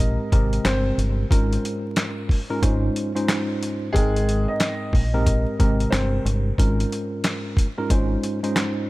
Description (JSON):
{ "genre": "hip hop, boom-bap hip-hop", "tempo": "91 BPM", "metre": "4/4", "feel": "swing 63% on 16ths", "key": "Ab major", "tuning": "A4 = 440 Hz", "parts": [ { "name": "warm upright piano", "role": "melody", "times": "0.0-6.2 s", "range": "Ab3 to Eb5", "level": "-28 LUFS", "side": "left 1 dB", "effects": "high-pass filter, low-pass filter, tape echo" }, { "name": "mellow tine electric piano", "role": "accompaniment", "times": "0.0-8.9 s", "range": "Ab2 to G5", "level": "-25 LUFS", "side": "equal", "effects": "medium stereo tremolo, high-pass filter, low-pass filter" }, { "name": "deep dub fingered electric bass", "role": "bass", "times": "0.0-8.2 s", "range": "G1 to Bb1", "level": "-22 LUFS", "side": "equal", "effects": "none" }, { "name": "dusty soul sampler-style drum kit", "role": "drums", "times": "0.3-8.8 s", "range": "handclaps, hi-hat, kick drum, snare drum", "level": "-22 LUFS", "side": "equal", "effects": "none" } ], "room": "little or no reverb", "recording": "vinyl crackle", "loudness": "-19 LUFS", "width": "side -19 dB against mid", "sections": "0.0-8.9 A section", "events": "none", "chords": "0.0 Abmaj7; 1.3 Bbm7/Ab; 2.6 Dbmaj9/Ab; 3.9 Abmaj7; 6.6 Bbm7/Ab; 7.9 Dbmaj9/Ab", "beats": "0.65 | 1.31 1.97 2.63 3.29 | 3.95 4.61 5.26 5.92 | 6.58 7.24 7.90 8.56" }